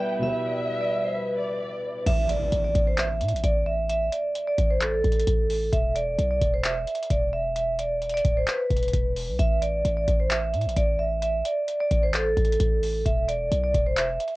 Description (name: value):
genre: hip hop, trap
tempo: 131 BPM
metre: 4/4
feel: half-time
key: unclear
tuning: A4 = 439 Hz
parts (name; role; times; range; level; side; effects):
- vibraphone with medium mallets; melody; 0.0-14.4 s; A4 to E5; -25 LUFS; right 2 dB; low-pass filter, cassette tape
- dark studio violin section; second line; 0.0-2.0 s; D5 to G5; -32 LUFS; left 1 dB; cassette tape, analog delay, plate reverb
- dark concert grand piano; accompaniment; 0.0-2.1 s; B2 to B4; -34 LUFS; equal; low-pass filter, cassette tape
- dark chamber string section; sustained chords; 0.0-2.0 s; G3 to B4; -34 LUFS; left 2 dB; cassette tape, plate reverb
- warm 808-style bass; bass; 2.1-14.2 s; D1 to A2; -28 LUFS; equal; none
- booming analog drum machine; drums; 2.1-14.3 s; crash cymbal, handclaps, hi-hat, kick drum; -26 LUFS; equal; vintage 12-bit sampler grit, cassette tape
- impact; sound effects; 2.1-3.9 s; none; -37 LUFS; left 1 dB; none
room: light reverb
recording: home recording on cassette, nothing above 11.0 kHz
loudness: -22 LUFS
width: side -19 dB against mid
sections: 0.0-2.1 A section; 2.1-14.4 B section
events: impact 2.1-3.9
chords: 0.0 Em; 2.1 A5; 5.7 E5; 9.4 A5; 13.1 E5